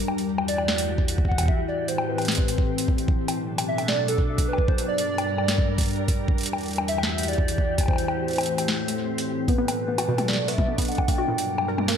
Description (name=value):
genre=IDM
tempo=150 BPM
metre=4/4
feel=straight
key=B phrygian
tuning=A4 = 437 Hz
part: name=glassy FM pad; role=sustained chords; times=0.0-12.0 s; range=E2 to Bb4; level=-27 LUFS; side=left 1 dB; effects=ensemble chorus, built-in reverb, vintage 12-bit sampler grit, sidechain pumping
part: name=electro analog drum machine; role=drums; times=0.1-12.0 s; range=bongos, hi-hat, snare drum, toms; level=-28 LUFS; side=left 2 dB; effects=none
part: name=warbly nostalgic lead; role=melody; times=0.5-12.0 s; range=A4 to G5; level=-29 LUFS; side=equal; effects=analog chorus, diffuse ambient delay
part: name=electronic kick drum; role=drums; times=1.0-11.2 s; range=none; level=-23 LUFS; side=equal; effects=none
part: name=warbly dusty pluck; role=arpeggios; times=9.5-12.0 s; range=Bb2 to B4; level=-29 LUFS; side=left 1 dB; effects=chorus, ping-pong delay
room=moderate plate reverb, RT60 1.4 s, digital ambience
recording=dreamy mix soaked in reverb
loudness=-22 LUFS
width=side -8 dB against mid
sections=0.0-9.5 A section; 9.5-12.0 B section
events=break 8.7-9.5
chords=0.0 Emadd9; 1.5 Am7; 3.1 Bm7; 4.7 Gm; 6.3 Emadd9; 7.9 Am7; 9.5 Bm7; 11.1 Gm